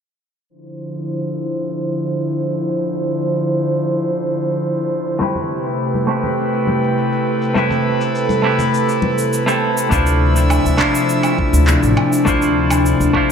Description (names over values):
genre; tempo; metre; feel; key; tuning
sunset chillout; 102 BPM; 4/4; straight; D minor; A4 = 440 Hz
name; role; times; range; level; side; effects
airy breathy pad; sustained chords; 0.7-13.3 s; C3 to E5; -18 LUFS; equal; chorus
electronic cabasa, woodblock and handclaps; drums; 0.5-13.1 s; none; -23 LUFS; right 1 dB; overdrive
semi-hollow electric guitar; accompaniment; 5.2-13.3 s; A3 to C5; -19 LUFS; left 1 dB; auto-pan, ping-pong delay
congas; percussion; 5.2-9.1 s; none; -25 LUFS; left 3 dB; none
upright bass; bass; 9.9-13.1 s; A1 to D2; -16 LUFS; equal; none
electronic kick drum; drums; 9.9-13.3 s; none; -22 LUFS; equal; none
room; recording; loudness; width
wet plate reverb, RT60 2.0 s, digital ambience; dreamy mix soaked in reverb, low-pass filter; -15 LUFS; side -7 dB against mid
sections
0.5-9.9 A section; 9.9-13.3 B section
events
filter sweep 0.5-9.9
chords
0.5 Dm9; 5.2 Am9; 9.9 Dm9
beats
| 0.50 1.09 1.68 2.27 | 2.85 3.44 4.03 4.62 | 5.21 5.79 6.38 6.97 | 7.56 8.15 8.74 9.32 | 9.91 10.50 11.09 11.68 | 12.27 12.85